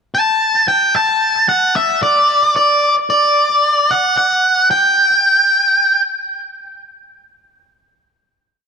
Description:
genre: rock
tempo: 112 BPM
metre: 3/4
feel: straight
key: unclear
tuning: A4 = 439 Hz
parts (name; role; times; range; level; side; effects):
- octave-fuzz lead guitar; solo; 0.1-6.0 s; D5 to A5; -11 LUFS; equal; distortion, analog delay
room: moderate lush hall reverb, RT60 1.9 s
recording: none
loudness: -11 LUFS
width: side -6 dB against mid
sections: 0.0-6.3 A section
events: none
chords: none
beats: 0.42 0.96 | 1.50 2.03 2.57 | 3.11 3.65 4.18 | 4.72 5.25 5.79

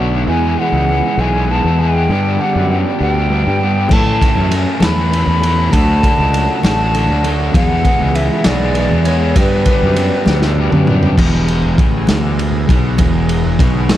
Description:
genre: psychedelic rock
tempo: 66 BPM (dotted quarters)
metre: 6/8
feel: straight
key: unclear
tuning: A4 = 440 Hz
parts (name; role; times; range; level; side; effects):
- hollow concert flute; melody; 0.0-10.6 s; B4 to B5; -19 LUFS; equal; analog delay
- pedal harmonium; sustained chords; 0.0-14.0 s; E3 to F#5; -26 LUFS; right 3 dB; none
- overdriven semi-hollow guitar; riff; 0.0-13.9 s; E2 to A4; -18 LUFS; equal; harmonic tremolo, analog delay
- fuzz fingered electric bass; bass; 0.0-13.9 s; E1 to A2; -16 LUFS; equal; overdrive
- vintage drum kit; drums; 3.9-14.0 s; crash cymbal, kick drum, ride cymbal, snare drum, toms; -16 LUFS; equal; none
- congas; percussion; 3.9-14.0 s; none; -24 LUFS; left 2 dB; none
room: studio reverb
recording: echo-heavy mix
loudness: -11 LUFS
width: side -13 dB against mid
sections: 0.0-11.2 A section; 11.2-14.0 B section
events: drum fill 10.3-11.2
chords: 0.3 E; 2.1 Gmaj7; 3.9 Aadd9; 5.7 D; 7.5 E; 9.4 Gmaj7; 11.2 E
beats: | 0.28 1.19 | 2.10 3.00 | 3.91 4.82 | 5.73 6.64 | 7.54 8.45 | 9.36 10.27 | 11.17 12.08 | 12.99 13.89

